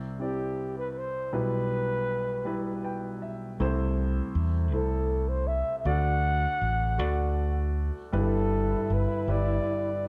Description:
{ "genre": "acoustic folk-pop ballad", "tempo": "53 BPM (dotted quarters)", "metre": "6/8", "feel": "straight", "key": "G major", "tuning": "A4 = 440 Hz", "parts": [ { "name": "warm concert grand piano", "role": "accompaniment", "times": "0.0-10.1 s", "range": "G1 to G5", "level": "-34 LUFS", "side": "equal", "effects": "none" }, { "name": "breathy flugelhorn", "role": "melody", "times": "0.2-10.0 s", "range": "G4 to F#5", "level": "-33 LUFS", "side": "equal", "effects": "none" }, { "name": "fingered electric bass", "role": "bass", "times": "3.6-9.6 s", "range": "G1 to E2", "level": "-30 LUFS", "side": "equal", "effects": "none" }, { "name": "French horn with straight mute", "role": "second line", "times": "8.1-10.0 s", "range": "E4", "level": "-37 LUFS", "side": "equal", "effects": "none" } ], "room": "light reverb", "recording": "dark, warm production", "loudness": "-28 LUFS", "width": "mono", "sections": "0.0-8.1 A section; 8.1-10.1 B section", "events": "none", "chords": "0.0 Cadd9; 1.3 Em/B; 3.6 Am/C; 5.8 D; 8.1 G6", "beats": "0.21 | 1.34 2.47 | 3.60 4.72 | 5.85 6.99 | 8.13 9.27" }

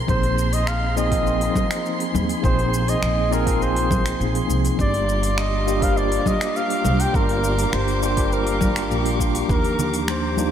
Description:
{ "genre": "sunset chillout", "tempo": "102 BPM", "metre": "4/4", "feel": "straight", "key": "unclear", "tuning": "A4 = 440 Hz", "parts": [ { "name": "dark chamber string section", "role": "sustained chords", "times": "0.0-10.5 s", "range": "G4 to D6", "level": "-32 LUFS", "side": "left 2 dB", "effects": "none" }, { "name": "drifting glass-harmonics texture", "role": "texture", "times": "0.0-10.5 s", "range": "Bb5 to C6", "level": "-35 LUFS", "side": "right 4 dB", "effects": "chorus, built-in reverb" }, { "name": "mellow flugelhorn", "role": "melody", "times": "0.1-10.5 s", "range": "Bb4 to G5", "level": "-25 LUFS", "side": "right 1 dB", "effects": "tape echo, slapback echo" }, { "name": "bright tine electric piano", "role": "accompaniment", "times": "0.1-10.5 s", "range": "F3 to C5", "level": "-24 LUFS", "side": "equal", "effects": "medium stereo tremolo, auto-pan, tape echo" }, { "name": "upright bass", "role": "bass", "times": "0.1-10.5 s", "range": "G1 to Eb2", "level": "-24 LUFS", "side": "equal", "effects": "none" }, { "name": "deep house drum kit", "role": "drums", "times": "0.1-10.5 s", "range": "congas, finger snaps, hi-hat, shaker", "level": "-28 LUFS", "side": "left 2 dB", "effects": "studio reverb" }, { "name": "electronic kick drum", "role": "drums", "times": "0.1-9.6 s", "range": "none", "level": "-23 LUFS", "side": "equal", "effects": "studio reverb" }, { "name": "congas", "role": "percussion", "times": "9.5-10.5 s", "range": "none", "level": "-29 LUFS", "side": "right 2 dB", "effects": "none" } ], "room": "moderate lush hall reverb, RT60 2.7 s", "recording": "big arena sound", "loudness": "-18 LUFS", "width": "side -9 dB against mid", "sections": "0.0-10.5 A section", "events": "none", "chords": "0.0 Bb9sus4; 4.8 Gm7; 9.5 Ebmaj7", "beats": "| 0.08 0.67 1.26 1.85 | 2.44 3.02 3.61 4.20 | 4.79 5.38 5.97 6.55 | 7.14 7.73 8.32 8.91 | 9.49 10.08" }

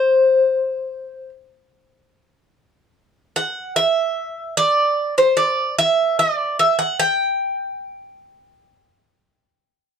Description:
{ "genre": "greek folk", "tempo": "148 BPM (eighths)", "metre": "9/8", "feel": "straight", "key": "unclear", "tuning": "A4 = 440 Hz", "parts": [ { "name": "Greek bouzouki", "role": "solo", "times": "0.0-10.0 s", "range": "C5 to G5", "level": "-16 LUFS", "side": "equal", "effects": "none" } ], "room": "moderate studio reverb, RT60 0.6 s", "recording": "dark, warm production", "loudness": "-16 LUFS", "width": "side -7 dB against mid", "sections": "0.0-10.0 A section", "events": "none", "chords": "none", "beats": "0.12 0.53 0.93 1.33 1.74 2.14 2.55 2.95 | 3.36 3.76 4.17 4.57 4.97 5.38 5.78 6.19 6.59 | 7.00 7.40 7.80 8.21 8.61 9.02 9.42 9.83" }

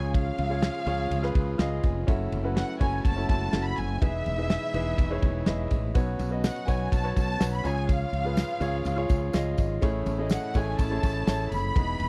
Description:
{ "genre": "piano-driven pop", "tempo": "124 BPM", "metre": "4/4", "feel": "straight", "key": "unclear", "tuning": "A4 = 438 Hz", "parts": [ { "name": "warm studio violin section", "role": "melody", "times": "0.0-12.1 s", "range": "E5 to B5", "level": "-36 LUFS", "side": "equal", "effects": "none" }, { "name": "warm baby grand piano", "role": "accompaniment", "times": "0.0-12.1 s", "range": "A2 to G#5", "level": "-34 LUFS", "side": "equal", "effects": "none" }, { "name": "warm studio string section", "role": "sustained chords", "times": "0.0-12.1 s", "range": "G#2 to D#5", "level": "-44 LUFS", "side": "equal", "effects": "none" }, { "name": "mellow fretless electric bass", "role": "bass", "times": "0.0-12.1 s", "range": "E1 to C#2", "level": "-32 LUFS", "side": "equal", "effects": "none" }, { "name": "loose indie drum kit", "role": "drums", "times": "0.1-12.1 s", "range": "kick drum, ride cymbal, snare drum", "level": "-28 LUFS", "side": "equal", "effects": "none" }, { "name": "tambourine", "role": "percussion", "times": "5.9-11.9 s", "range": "none", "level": "-54 LUFS", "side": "equal", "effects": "none" } ], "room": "studio ambience", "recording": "dry, close 1970s-style studio recording", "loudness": "-27 LUFS", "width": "mono", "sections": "0.0-12.1 A section", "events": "grand piano fill 1.4-2.1, 8.9-9.8", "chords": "0.0 C#; 2.1 F#m7; 4.0 Emaj7; 6.0 Bsus2; 7.6 C#; 9.8 Amaj7", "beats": "| 0.15 0.63 1.11 1.60 | 2.08 2.56 3.05 3.53 | 4.02 4.50 4.98 5.47 | 5.95 6.44 6.92 7.40 | 7.89 8.37 8.86 9.34 | 9.82 10.31 10.79 11.27 | 11.76" }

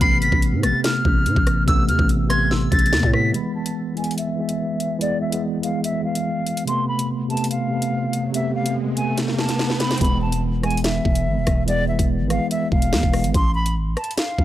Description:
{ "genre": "hip hop, drill", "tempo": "144 BPM", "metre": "4/4", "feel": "half-time", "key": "unclear", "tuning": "A4 = 440 Hz", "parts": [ { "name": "hollow concert flute", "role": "melody", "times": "0.0-14.4 s", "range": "D5 to C7", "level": "-25 LUFS", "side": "equal", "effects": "low-pass filter" }, { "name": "soft synth bell", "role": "second line", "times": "0.0-2.9 s", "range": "B5 to E6", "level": "-33 LUFS", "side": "right 3 dB", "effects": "chorus, analog delay" }, { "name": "mellow tine electric piano", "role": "accompaniment", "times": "0.0-13.4 s", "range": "C3 to B3", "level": "-23 LUFS", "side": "equal", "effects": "medium stereo tremolo, low-pass filter" }, { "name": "growling 808-style bass", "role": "bass", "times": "0.0-3.3, 10.0-14.4 s", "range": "E1 to A2", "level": "-21 LUFS", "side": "equal", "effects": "none" }, { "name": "drill drum kit", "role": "drums", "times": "0.0-14.4 s", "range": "hi-hat, kick drum, rim click, snare drum", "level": "-22 LUFS", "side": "equal", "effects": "none" }, { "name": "riser", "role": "sound effects", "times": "7.9-10.0 s", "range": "none", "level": "-32 LUFS", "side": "right 1 dB", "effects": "none" } ], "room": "digital ambience", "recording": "dry, gritty hardware recording, transformer saturation", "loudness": "-18 LUFS", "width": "side -13 dB against mid", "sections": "0.0-3.3 A section; 3.3-10.0 B section; 10.0-14.4 C section", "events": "filter sweep 3.3-10.0; riser 7.9-10.0; drum fill 9.2-10.0", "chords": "0.0 Amadd9; 3.3 E; 6.7 Amadd9; 10.0 E; 13.3 A5", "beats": "| 0.01 0.43 0.84 1.26 | 1.68 2.09 2.51 2.93 | 3.34 3.76 4.18 4.59 | 5.01 5.43 5.84 6.26 | 6.68 7.09 7.51 7.93 | 8.34 8.76 9.18 9.59 | 10.01 10.43 10.84 11.26 | 11.68 12.09 12.51 12.93 | 13.34 13.76 14.18" }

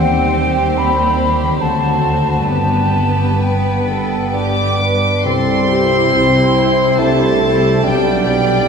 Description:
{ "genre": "classical, slow romantic movement for symphony orchestra", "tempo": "64-78 BPM", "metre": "3/4", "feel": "rubato", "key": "G major, C major from 5.3 s", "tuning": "A4 = 439 Hz", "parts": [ { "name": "warm chamber violin section", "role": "melody", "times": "0.0-8.7 s", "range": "B4 to D5", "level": "-25 LUFS", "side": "left 1 dB", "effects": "none" }, { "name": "hollow concert flute", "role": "second line", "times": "0.0-4.8 s", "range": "G5 to B5", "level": "-19 LUFS", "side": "left 1 dB", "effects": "none" }, { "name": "warm studio violin section", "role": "second line", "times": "0.0-8.7 s", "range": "F#4 to D6", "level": "-20 LUFS", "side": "equal", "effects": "none" }, { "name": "dark chamber viola section", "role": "accompaniment", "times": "0.0-8.7 s", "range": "A3 to G4", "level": "-23 LUFS", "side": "equal", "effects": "none" }, { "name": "clear French horn section", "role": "sustained chords", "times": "0.0-4.9 s", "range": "F#3 to C4", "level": "-26 LUFS", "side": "left 1 dB", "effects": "none" }, { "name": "concert harp", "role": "arpeggios", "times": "0.0-8.7 s", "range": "G2 to C5", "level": "-23 LUFS", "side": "left 4 dB", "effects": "none" }, { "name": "dark chamber cello section", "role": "bass", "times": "0.0-8.7 s", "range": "D2 to A4", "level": "-21 LUFS", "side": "right 2 dB", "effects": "none" }, { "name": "dark symphonic double bass section", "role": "bass", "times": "0.0-8.7 s", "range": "G1 to Eb2", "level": "-22 LUFS", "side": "right 2 dB", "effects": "none" }, { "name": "mellow bassoon", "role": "accompaniment", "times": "4.3-8.7 s", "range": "G3 to D4", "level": "-16 LUFS", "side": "equal", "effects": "none" }, { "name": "mellow tuba", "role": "bass", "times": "5.3-8.7 s", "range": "B1 to C2", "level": "-20 LUFS", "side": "right 2 dB", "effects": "none" } ], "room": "wet church reverb, RT60 3.5 s", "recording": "minimal, uncompressed stereo recording", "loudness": "-12 LUFS", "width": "side -6 dB against mid", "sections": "0.0-5.3 A section; 5.3-8.7 B section", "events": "none", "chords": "0.0 Cm/Eb; 1.6 D7; 2.5 G; 5.3 C; 7.8 G/B", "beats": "0.78 1.61 | 2.51 3.44 4.34 | 5.26 6.14 7.00 | 7.84 8.65" }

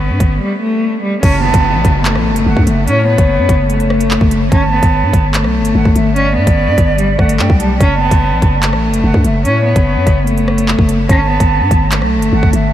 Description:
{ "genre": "hip hop, drill", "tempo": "146 BPM", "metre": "4/4", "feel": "half-time", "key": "F# phrygian", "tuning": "A4 = 444 Hz", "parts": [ { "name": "warm cello", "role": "melody", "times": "0.0-12.7 s", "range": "G3 to C#4", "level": "-16 LUFS", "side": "left 1 dB", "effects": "low-pass filter, analog delay" }, { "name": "growling 808-style bass", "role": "bass", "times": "0.0-12.7 s", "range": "F#1 to A2", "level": "-14 LUFS", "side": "equal", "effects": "none" }, { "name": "drill drum kit", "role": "drums", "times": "0.2-12.6 s", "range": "crash cymbal, handclaps, hi-hat, kick drum, rim click", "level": "-15 LUFS", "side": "equal", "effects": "none" }, { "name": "concert flute", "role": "second line", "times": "1.2-12.7 s", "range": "C#5 to A5", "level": "-18 LUFS", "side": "right 1 dB", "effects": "analog delay" }, { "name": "downlifter", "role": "sound effects", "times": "1.2-4.5 s", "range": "none", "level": "-25 LUFS", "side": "equal", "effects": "none" } ], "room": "moderate huge ambient reverb, RT60 8.0 s", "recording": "dreamy mix soaked in reverb", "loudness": "-10 LUFS", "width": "side -12 dB against mid", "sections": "0.0-1.2 A section; 1.2-12.7 B section", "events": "break 0.4-1.2", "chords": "0.0 Gadd9; 1.2 F#m; 4.5 Gadd9; 7.8 F#m; 11.1 Gadd9", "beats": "0.00 0.41 0.82 | 1.23 1.64 2.05 2.46 | 2.87 3.29 3.70 4.11 | 4.52 4.93 5.34 5.75 | 6.16 6.57 6.98 7.39 | 7.81 8.22 8.63 9.04 | 9.45 9.86 10.27 10.68 | 11.09 11.50 11.91 12.33" }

